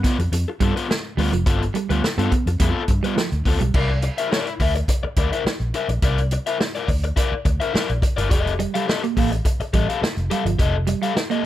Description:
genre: funk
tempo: 105 BPM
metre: 4/4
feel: straight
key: unclear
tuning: A4 = 440 Hz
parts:
  - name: raw garage guitar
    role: accompaniment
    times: 0.0-11.4 s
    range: B3 to F5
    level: -25 LUFS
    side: left 6 dB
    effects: overdrive
  - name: clean electric guitar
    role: riff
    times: 0.0-3.7, 8.5-11.4 s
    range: F3 to B3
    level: -26 LUFS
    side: right 8 dB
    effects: none
  - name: vintage drum kit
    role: drums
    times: 0.0-11.4 s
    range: crash cymbal, hi-hat, kick drum, snare drum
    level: -22 LUFS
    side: equal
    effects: none
  - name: vintage muted fingered electric bass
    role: bass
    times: 0.2-10.9 s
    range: F1 to G2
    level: -22 LUFS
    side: equal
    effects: none
room: little or no reverb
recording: none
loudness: -19 LUFS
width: side -13 dB against mid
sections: 0.0-3.7 A section; 3.7-11.5 B section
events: none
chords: 0.0 G9; 3.7 C9; 8.3 F9

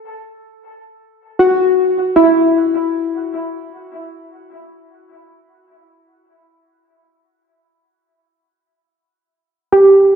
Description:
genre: ambient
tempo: free time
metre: none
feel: none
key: E minor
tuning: A4 = 440 Hz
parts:
  - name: soft round pluck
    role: solo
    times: 0.0-3.6, 9.7-10.2 s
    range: E4 to A4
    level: -11 LUFS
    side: equal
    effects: wide subtle chorus, diffuse ambient delay
room: wet concert hall reverb, RT60 1.9 s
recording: dark, warm production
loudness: -11 LUFS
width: side -6 dB against mid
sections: 0.0-9.6 A section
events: none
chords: 0.0 Esus24; 3.2 Esus2; 9.6 N.C.

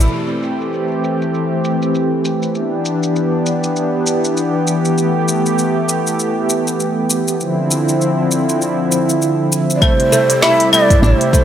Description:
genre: organic downtempo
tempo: 99 BPM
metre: 4/4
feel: swing 59% on 16ths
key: A minor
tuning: A4 = 440 Hz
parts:
  - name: warm analog pad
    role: sustained chords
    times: 0.0-11.4 s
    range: C3 to G4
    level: -15 LUFS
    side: equal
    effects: chorus, tremolo, sidechain pumping
  - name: woody FM bass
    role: bass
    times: 0.0-0.1, 11.0-11.1 s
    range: A1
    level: -12 LUFS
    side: equal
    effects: sidechain pumping
  - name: deep house drum kit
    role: drums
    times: 0.0-11.4 s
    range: claves, crash cymbal, hi-hat, shaker, snare drum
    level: -19 LUFS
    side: left 2 dB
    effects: low-pass filter on perc, low-pass filter on snare, low-pass filter on cymbals, low-pass filter on hats
  - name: breathy ney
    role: melody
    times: 9.8-11.4 s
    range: C5 to E5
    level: -17 LUFS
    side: right 1 dB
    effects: tape echo
  - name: oud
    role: arpeggios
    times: 9.8-11.4 s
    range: A3 to E4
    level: -20 LUFS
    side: left 1 dB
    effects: digital delay
  - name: electronic kick drum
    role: drums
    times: 9.8-11.4 s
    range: none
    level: -13 LUFS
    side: equal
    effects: none
  - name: udu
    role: percussion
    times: 10.9-11.0 s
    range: none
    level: -24 LUFS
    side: left 2 dB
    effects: none
room: moderate lush hall reverb, RT60 2.6 s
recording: none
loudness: -13 LUFS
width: side -10 dB against mid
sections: 0.1-9.8 A section; 9.8-11.4 B section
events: none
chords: 0.1 Am7; 2.5 Em7; 5.0 G69; 7.4 Dm9; 9.8 Am7

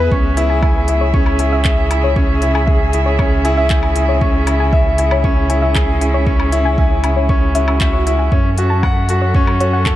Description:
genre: piano and strings electronica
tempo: 117 BPM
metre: 4/4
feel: straight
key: C# minor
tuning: A4 = 440 Hz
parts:
  - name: muted string quartet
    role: sustained chords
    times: 0.0-10.0 s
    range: C#3 to F#5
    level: -22 LUFS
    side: right 2 dB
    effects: sidechain pumping
  - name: soft round pluck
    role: arpeggios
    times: 0.0-9.8 s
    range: C#5 to E6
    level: -23 LUFS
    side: left 3 dB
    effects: chorus, sidechain pumping, tape echo
  - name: bright concert grand piano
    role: riff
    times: 0.0-10.0 s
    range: B3 to G#5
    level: -18 LUFS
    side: left 1 dB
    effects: tape echo
  - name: round analog bass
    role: bass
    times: 0.0-10.0 s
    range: C#2 to F#2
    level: -17 LUFS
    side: equal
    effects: sidechain pumping
  - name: electronic kick drum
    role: drums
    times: 0.1-10.0 s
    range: none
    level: -16 LUFS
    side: equal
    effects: none
  - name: organic electronic drum kit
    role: drums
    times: 0.4-10.0 s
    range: handclaps, hi-hat, woodblock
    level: -24 LUFS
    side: left 1 dB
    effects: none
  - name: swell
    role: sound effects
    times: 7.5-8.3 s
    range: none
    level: -27 LUFS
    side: right 4 dB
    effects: none
room: light reverb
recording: dark, warm production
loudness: -12 LUFS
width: side -14 dB against mid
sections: 0.0-10.0 A section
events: swell 7.5-8.3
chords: 0.1 C#m; 8.3 F#m

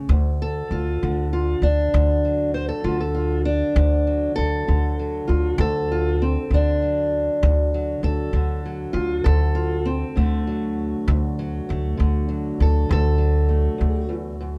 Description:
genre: acoustic country blues, solo or duo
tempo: 66 BPM (dotted quarters)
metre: 12/8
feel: straight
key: D mixolydian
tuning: A4 = 441 Hz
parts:
  - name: fingerpicked steel-string acoustic guitar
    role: melody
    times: 0.0-14.6 s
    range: D2 to C5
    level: -25 LUFS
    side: equal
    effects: none
  - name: upright bass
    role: bass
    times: 0.1-14.6 s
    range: D2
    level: -23 LUFS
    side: equal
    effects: none
room: light reverb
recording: dark, warm production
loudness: -22 LUFS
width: mono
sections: 0.1-14.6 A section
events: none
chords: 0.1 D

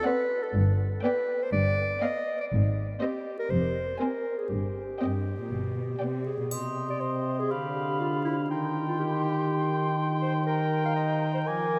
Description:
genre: cinematic, playful, whimsical film cue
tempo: 121 BPM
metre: 4/4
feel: straight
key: C minor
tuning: A4 = 438 Hz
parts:
  - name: warm studio violin section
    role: melody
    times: 0.0-6.4 s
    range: Eb5 to Ab5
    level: -44 LUFS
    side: equal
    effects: none
  - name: warm clarinet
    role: second line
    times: 0.0-11.8 s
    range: Eb4 to F5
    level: -33 LUFS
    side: equal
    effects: none
  - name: dark studio violin section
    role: second line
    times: 0.1-6.4 s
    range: C5 to Eb5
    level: -45 LUFS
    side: equal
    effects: none
  - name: dark studio viola section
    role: accompaniment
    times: 0.1-6.4 s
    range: B3 to C4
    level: -39 LUFS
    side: equal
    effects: none
  - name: warm studio cello section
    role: bass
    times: 0.5-6.5 s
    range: F2 to C3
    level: -32 LUFS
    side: equal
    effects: none
  - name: dark studio double bass section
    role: bass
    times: 0.6-5.9 s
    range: F1 to Ab1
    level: -32 LUFS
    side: equal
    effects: none
  - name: mellow cor anglais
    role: second line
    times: 6.5-11.8 s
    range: Eb5 to Ab5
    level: -36 LUFS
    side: equal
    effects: none
  - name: mellow hollow concert flute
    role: second line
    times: 6.5-11.8 s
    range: Bb5 to D6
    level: -37 LUFS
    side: equal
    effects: none
  - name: warm French horn section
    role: sustained chords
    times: 6.5-11.8 s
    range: C3 to F3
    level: -32 LUFS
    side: equal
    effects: none
  - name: triangle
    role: percussion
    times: 6.5-7.5 s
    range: none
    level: -44 LUFS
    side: equal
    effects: none
room: wet cathedral reverb, RT60 5.6 s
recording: in a vast, echoing space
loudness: -28 LUFS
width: mono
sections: 0.0-6.5 A section; 6.5-11.8 B section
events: none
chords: 0.0 D7; 0.5 G; 2.5 Ab; 3.5 Fm; 4.5 Cm/G; 5.5 G; 6.5 Cm; 7.5 Bdim/D; 8.5 Cm/Eb

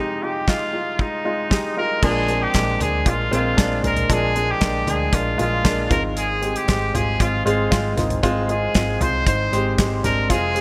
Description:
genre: piano-driven pop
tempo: 116 BPM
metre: 4/4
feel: straight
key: unclear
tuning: A4 = 440 Hz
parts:
  - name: bright trumpet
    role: melody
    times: 0.0-10.6 s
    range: Eb4 to C5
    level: -26 LUFS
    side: equal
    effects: none
  - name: warm upright piano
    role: accompaniment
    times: 0.0-10.6 s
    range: F2 to Ab4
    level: -25 LUFS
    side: equal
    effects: none
  - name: damped 70s drum kit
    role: drums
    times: 0.5-10.6 s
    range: crash cymbal, hi-hat, kick drum, snare drum, toms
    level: -24 LUFS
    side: equal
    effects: none
  - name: vintage muted picked electric bass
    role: bass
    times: 2.0-10.6 s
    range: F1 to D2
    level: -28 LUFS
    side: equal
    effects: none
room: light reverb, studio ambience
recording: bright 1980s-style digital production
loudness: -20 LUFS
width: mono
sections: 0.0-2.0 A section; 2.0-10.6 B section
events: none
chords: 0.0 Fm7; 2.0 Bb7; 5.9 Ab6

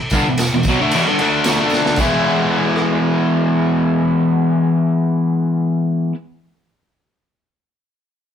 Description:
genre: garage rock duo or trio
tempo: 113 BPM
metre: 4/4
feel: straight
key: E major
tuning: A4 = 443 Hz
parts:
  - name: crunchy overdriven guitar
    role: riff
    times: 0.1-6.2 s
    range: E2 to E4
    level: -15 LUFS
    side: left 1 dB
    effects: none
  - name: raw garage drum kit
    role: drums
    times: 0.1-2.9 s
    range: crash cymbal, kick drum, rim click, snare drum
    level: -20 LUFS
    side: equal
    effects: none
  - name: tambourine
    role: percussion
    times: 0.1-2.2 s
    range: none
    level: -30 LUFS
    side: right 3 dB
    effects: none
room: moderate studio reverb, RT60 0.8 s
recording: band playing live in one room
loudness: -14 LUFS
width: side -8 dB against mid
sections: 0.0-2.0 A section; 2.0-6.2 B section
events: drum fill 1.7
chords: 0.0 E5; 2.0 E

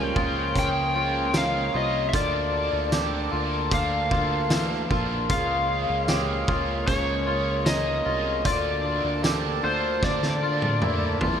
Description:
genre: dream pop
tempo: 76 BPM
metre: 4/4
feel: straight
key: unclear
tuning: A4 = 440 Hz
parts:
  - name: overdriven slide guitar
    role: melody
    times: 0.0-11.2 s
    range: C5 to Ab5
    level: -27 LUFS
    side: left 2 dB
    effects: digital delay
  - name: overdriven electric guitar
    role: accompaniment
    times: 0.0-11.4 s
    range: Db3 to A4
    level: -33 LUFS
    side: right 4 dB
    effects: harmonic tremolo, wide subtle chorus
  - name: pedal harmonium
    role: sustained chords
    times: 0.0-11.4 s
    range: D3 to A4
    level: -32 LUFS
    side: right 3 dB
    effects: none
  - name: clean electric guitar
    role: arpeggios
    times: 0.0-11.4 s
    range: E3 to G4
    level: -30 LUFS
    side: left 3 dB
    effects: wide subtle chorus, digital delay
  - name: fat analog bass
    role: bass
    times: 0.0-11.4 s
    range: Bb1 to E2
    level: -30 LUFS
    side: right 1 dB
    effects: none
  - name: oversized low-tuned drum kit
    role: drums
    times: 0.2-11.4 s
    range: hi-hat, kick drum, snare drum, tambourine, toms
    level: -27 LUFS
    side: right 1 dB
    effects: none
room: moderate plate reverb, RT60 2.7 s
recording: bright 1980s-style digital production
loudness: -22 LUFS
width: side -8 dB against mid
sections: 0.0-11.4 A section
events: drum fill 10.0-11.4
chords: 0.0 Db6; 2.1 Bbmaj7/D; 5.3 Db6; 8.5 Bbmaj7/D

